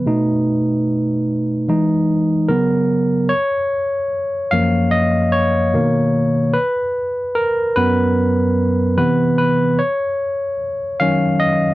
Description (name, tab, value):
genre	R&B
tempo	74 BPM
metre	4/4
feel	swing 60% on 16ths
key	F# major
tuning	A4 = 440 Hz
part	barky tine electric piano	solo	0.0-11.7 s	F#2 to E#5	-15 LUFS	equal	overdrive
room	little or no reverb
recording	dry, close 1970s-style studio recording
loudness	-15 LUFS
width	side -17 dB against mid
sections	0.0-3.3 A section; 3.3-11.7 B section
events	tine electric piano solo 0.0-3.3, 3.3-11.7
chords	0.1 B7; 1.7 Emaj7; 2.5 C#7sus4; 3.3 F#maj7; 5.7 Bmaj7; 6.5 F#add11; 9.0 Cmaj7; 9.8 D#m7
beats	| 0.06 0.87 1.68 2.49 | 3.30 4.11 4.92 5.74 | 6.55 7.36 8.17 8.98 | 9.79 10.60 11.41